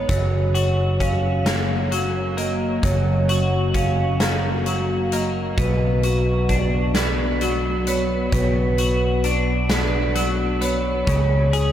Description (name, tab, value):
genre	post-rock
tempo	44 BPM (dotted quarters)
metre	6/8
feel	straight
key	F# major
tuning	A4 = 440 Hz
part	twelve-string electric guitar	arpeggios	0.0-11.7 s	F#2 to G#4	-23 LUFS	left 2 dB	analog chorus, analog delay
part	vibraphone with hard mallets	arpeggios	0.0-11.7 s	B4 to E#5	-26 LUFS	right 3 dB	analog delay
part	fingered electric bass	bass	0.0-11.7 s	F#1 to C#2	-22 LUFS	equal	none
part	huge arena drum kit	drums	0.1-11.7 s	hi-hat, kick drum, snare drum	-26 LUFS	equal	none
room	wet huge ambient reverb, RT60 8.4 s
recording	dreamy mix soaked in reverb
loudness	-18 LUFS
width	side -10 dB against mid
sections	0.0-11.7 A section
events	none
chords	0.1 F#; 5.6 Bm; 11.1 C#5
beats	| 0.09 1.46 | 2.83 4.21 | 5.58 6.96 | 8.33 9.70 | 11.08